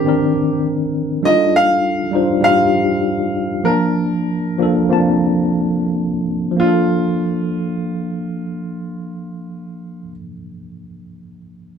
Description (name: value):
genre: soul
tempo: 86-101 BPM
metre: 4/4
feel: straight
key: Bb major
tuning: A4 = 439 Hz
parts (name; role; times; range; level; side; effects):
- clear baby grand piano; melody; 0.0-10.1 s; F4 to F5; -19 LUFS; equal; none
- tine electric piano; accompaniment; 0.0-11.8 s; Eb3 to A5; -17 LUFS; equal; overdrive, fast stereo tremolo
room: wet studio reverb, RT60 0.7 s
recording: band playing live in one room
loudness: -15 LUFS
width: side -7 dB against mid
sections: 0.0-6.6 A section; 6.6-9.4 B section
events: slowing down 1.5-6.6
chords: 0.0 Cm9; 1.2 F13; 3.6 Bbmaj7